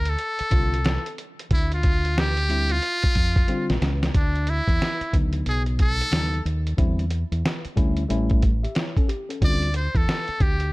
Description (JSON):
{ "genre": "hip hop, jazz-hop", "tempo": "91 BPM", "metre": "4/4", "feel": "swing 62% on 16ths", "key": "unclear", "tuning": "A4 = 440 Hz", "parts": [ { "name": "trumpet with metal mute", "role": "melody", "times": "0.0-10.7 s", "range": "D4 to D5", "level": "-26 LUFS", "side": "equal", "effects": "none" }, { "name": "fingered electric bass", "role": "bass", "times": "0.0-10.7 s", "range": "A1 to F2", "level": "-24 LUFS", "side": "equal", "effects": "none" }, { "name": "lo-fi sampler-style drum kit", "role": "drums", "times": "0.1-10.7 s", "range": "hi-hat, kick drum, snare drum", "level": "-22 LUFS", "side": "equal", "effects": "none" }, { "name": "tine electric piano", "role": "accompaniment", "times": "0.5-9.7 s", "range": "C#3 to E5", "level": "-29 LUFS", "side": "left 2 dB", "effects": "none" } ], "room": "little or no reverb", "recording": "none", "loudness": "-20 LUFS", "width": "side -21 dB against mid", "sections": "0.0-4.1 A section; 4.1-10.7 B section", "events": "drum fill 3.5-4.1", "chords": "0.0 Dm7; 4.1 Dsus2; 5.5 B7; 6.8 D9sus4; 8.1 A7; 9.4 Dm7", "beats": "0.19 0.85 | 1.51 2.17 2.83 3.49 | 4.14 4.80 5.46 6.12 | 6.78 7.44 8.10 8.76 | 9.42 10.08" }